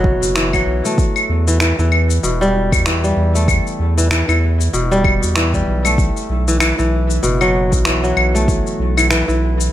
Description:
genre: organic downtempo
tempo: 96 BPM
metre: 4/4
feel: swing 58% on 16ths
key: E minor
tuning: A4 = 438 Hz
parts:
  - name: kora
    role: arpeggios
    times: 0.0-9.7 s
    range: B2 to A3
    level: -18 LUFS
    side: equal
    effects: tape echo
  - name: round analog bass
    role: bass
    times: 0.0-9.7 s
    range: E1 to E2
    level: -17 LUFS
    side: equal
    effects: tube saturation
  - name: electronic kick drum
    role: drums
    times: 0.0-8.6 s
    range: none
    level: -18 LUFS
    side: equal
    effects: none
  - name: electronic shaker, finger snaps and claves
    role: drums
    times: 0.2-9.7 s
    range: none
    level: -19 LUFS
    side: left 2 dB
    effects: none
room: light reverb, digital ambience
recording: none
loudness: -13 LUFS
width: side -12 dB against mid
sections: 0.0-9.7 A section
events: none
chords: 0.0 B5; 1.0 Em; 6.0 B5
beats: 0.36 | 0.98 1.61 2.23 2.86 | 3.48 4.11 4.73 5.36 | 5.98 6.61 7.23 7.86 | 8.48 9.11

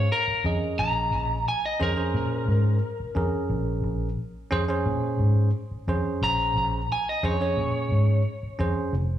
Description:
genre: blues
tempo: 88 BPM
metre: 4/4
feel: straight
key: Bb minor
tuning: A4 = 440 Hz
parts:
  - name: electric guitar at the edge of break-up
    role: second line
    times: 0.0-8.6 s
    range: Bb4 to Bb5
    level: -27 LUFS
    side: equal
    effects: digital delay, slapback echo
  - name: bell-like tine electric piano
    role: accompaniment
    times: 0.0-8.9 s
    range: Db4 to Eb5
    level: -30 LUFS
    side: right 3 dB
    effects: slapback echo
  - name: vintage muted fingered electric bass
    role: bass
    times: 0.0-9.2 s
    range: F1 to Bb2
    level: -24 LUFS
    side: equal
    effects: none
room: digital ambience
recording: live gig heard through the venue's PA, club reverb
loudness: -23 LUFS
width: side -11 dB against mid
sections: 0.0-9.2 A section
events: clean electric guitar solo 0.0-9.2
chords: 0.0 Bbm7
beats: 0.11 | 0.79 1.47 2.15 2.83 | 3.50 4.18 4.86 5.54 | 6.22 6.90 7.58 8.26 | 8.93

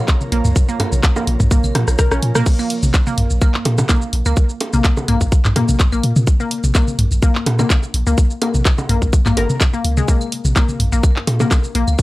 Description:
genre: minimal techno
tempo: 126 BPM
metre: 4/4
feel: swing 53% on 16ths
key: Bb minor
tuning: A4 = 440 Hz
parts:
  - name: airy breathy pad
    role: texture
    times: 0.0-2.5 s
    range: F4 to Bb5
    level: -33 LUFS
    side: right 1 dB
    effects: chorus, sidechain pumping
  - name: swarming drone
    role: texture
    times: 0.0-2.5 s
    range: F3 to Bb3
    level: -36 LUFS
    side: equal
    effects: none
  - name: electronic kick drum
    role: drums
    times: 0.1-12.0 s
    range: none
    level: -14 LUFS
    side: equal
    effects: small room ambience
  - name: garage drum kit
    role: drums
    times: 0.1-12.0 s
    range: crash cymbal, handclaps, hi-hat, rim click, shaker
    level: -22 LUFS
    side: equal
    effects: small room ambience
  - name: electronic toms, bongos and claves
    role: percussion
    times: 0.2-12.0 s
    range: none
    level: -22 LUFS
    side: equal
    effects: small room ambience, tape echo
  - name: resonant blip pluck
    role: riff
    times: 0.3-11.8 s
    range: Ab3 to Bb4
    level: -22 LUFS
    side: left 2 dB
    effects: chorus, sidechain pumping, analog delay
  - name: punchy sub bass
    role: bass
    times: 0.3-12.0 s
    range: Ab1 to Bb2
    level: -17 LUFS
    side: equal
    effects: tube saturation, sidechain pumping
room: little or no reverb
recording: dry, gritty hardware recording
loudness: -14 LUFS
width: side -18 dB against mid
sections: 0.0-2.5 A section; 2.5-12.0 A section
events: drop 0.0-2.5, 2.5-12.0; drum fill 1.8-2.5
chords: 0.0 Bbm; 2.5 N.C.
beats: 0.08 | 0.56 1.04 1.51 1.99 | 2.46 2.94 3.42 3.89 | 4.37 4.84 5.32 5.80 | 6.27 6.75 7.23 7.70 | 8.18 8.65 9.13 9.61 | 10.08 10.56 11.04 11.51 | 11.99

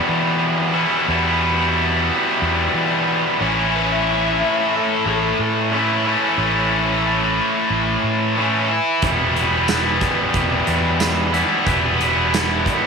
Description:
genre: classic rock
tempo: 91 BPM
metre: 4/4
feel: straight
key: E dorian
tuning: A4 = 440 Hz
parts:
  - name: tight distorted guitar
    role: riff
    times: 0.0-12.9 s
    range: E2 to E4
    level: -17 LUFS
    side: equal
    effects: distortion
  - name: fingered electric bass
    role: bass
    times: 0.1-12.7 s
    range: E1 to E3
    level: -24 LUFS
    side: equal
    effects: none
  - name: biting overdriven guitar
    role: second line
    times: 3.8-5.4 s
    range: A4 to E5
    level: -24 LUFS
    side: left 9 dB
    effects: none
  - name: huge arena drum kit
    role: drums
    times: 9.0-12.8 s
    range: hi-hat, kick drum, snare drum, tambourine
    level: -24 LUFS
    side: right 4 dB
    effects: none
room: light reverb, small room ambience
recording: 1960s-style stereo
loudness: -16 LUFS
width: side -5 dB against mid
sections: 0.0-12.9 A section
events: none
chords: 0.0 Em; 3.4 A; 9.0 Em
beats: 0.42 | 1.08 1.75 2.42 3.08 | 3.75 4.41 5.07 5.74 | 6.40 7.06 7.72 8.38 | 9.04 9.70 10.35 11.01 | 11.67 12.33

